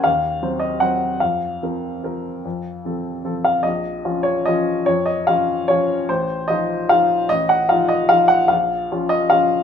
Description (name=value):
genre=classical, piano waltz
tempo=148 BPM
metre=3/4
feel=rubato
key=Bb minor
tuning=A4 = 440 Hz
part: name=warm baby grand piano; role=solo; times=0.0-9.6 s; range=A1 to Gb5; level=-17 LUFS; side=left 1 dB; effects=none
room=light reverb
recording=minimal, uncompressed stereo recording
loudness=-17 LUFS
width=side -8 dB against mid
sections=0.0-3.6 A section; 3.6-9.6 B section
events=none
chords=0.0 Cdim/Eb; 1.2 Fsus4; 2.4 F; 3.6 Bbm; 6.1 F7/A; 8.5 Bbm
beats=| 0.05 0.41 0.80 | 1.21 1.62 2.04 | 2.45 2.84 3.25 | 3.65 4.05 4.46 | 4.86 5.27 5.68 | 6.08 6.48 6.90 | 7.29 7.69 8.09 | 8.50 8.90 9.32